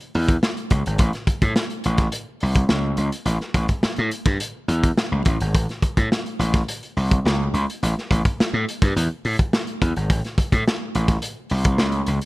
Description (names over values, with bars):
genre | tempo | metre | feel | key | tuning
funk | 106 BPM | 4/4 | straight | unclear | A4 = 440 Hz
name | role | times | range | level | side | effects
crunchy breakbeat drum kit | drums | 0.0-12.3 s | hi-hat, kick drum, snare drum | -21 LUFS | equal | none
gritty slap bass | bass | 0.1-12.2 s | G#1 to A2 | -21 LUFS | equal | overdrive
room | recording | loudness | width
little or no reverb | none | -19 LUFS | side -20 dB against mid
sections
0.0-12.3 A section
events
none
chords
none